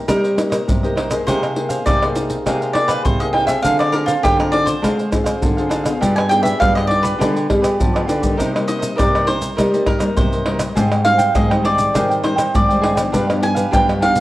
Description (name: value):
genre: samba and choro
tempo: 101 BPM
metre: 4/4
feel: straight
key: C minor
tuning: A4 = 445 Hz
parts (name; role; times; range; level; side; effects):
- cavaquinho; melody; 0.0-14.2 s; F4 to Ab5; -19 LUFS; right 1 dB; none
- cavaquinho; accompaniment; 0.0-14.2 s; D4 to G5; -24 LUFS; right 2 dB; none
- nylon-string guitar; accompaniment; 0.0-14.2 s; G2 to Ab4; -24 LUFS; left 3 dB; none
- nylon-string guitar; bass; 0.1-14.2 s; G2 to Ab3; -21 LUFS; equal; transformer saturation
- maracas, surdo, pandeiro and tamborim; percussion; 0.1-14.2 s; none; -20 LUFS; equal; none
room: moderate large studio reverb, RT60 1.1 s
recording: worn, warbling old tape, cassette tape, warbly pitch drift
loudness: -14 LUFS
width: side -16 dB against mid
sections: 0.0-14.2 A section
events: cavaquinho solo 0.0-14.2; drum fill 7.9-8.4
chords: 0.0 Cm7; 1.3 Fm7/C; 3.6 Dm7b5; 6.0 G7b9; 8.4 Cm7; 10.8 Abmaj7; 13.1 G7